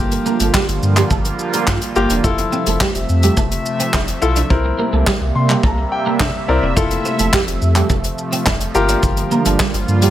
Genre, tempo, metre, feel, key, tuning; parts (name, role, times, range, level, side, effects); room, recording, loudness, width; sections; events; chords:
dance-pop; 106 BPM; 4/4; straight; F major; A4 = 439 Hz
clear concert grand piano; accompaniment; 0.0-9.7 s; Bb3 to C6; -20 LUFS; left 4 dB; sidechain pumping
sweeping resonant pad; sustained chords; 0.0-10.1 s; C3 to E5; -21 LUFS; right 2 dB; chorus, sidechain pumping
warm sub bass; bass; 0.0-10.1 s; E1 to C3; -18 LUFS; equal; sidechain pumping
twelve-string electric guitar; riff; 0.1-10.1 s; G3 to F4; -22 LUFS; right 5 dB; ensemble chorus
natural country drum kit; drums; 0.1-10.1 s; handclaps, hi-hat, kick drum, shaker, snare drum; -19 LUFS; equal
light reverb, studio ambience; -14 LUFS; side -12 dB against mid
0.0-10.1 A section
hi-hats muted 4.5-6.8; grand piano fill 5.1-6.8
0.0 Gm7; 2.2 Fmaj7; 4.5 C7; 6.8 Fmaj7; 8.7 Gm7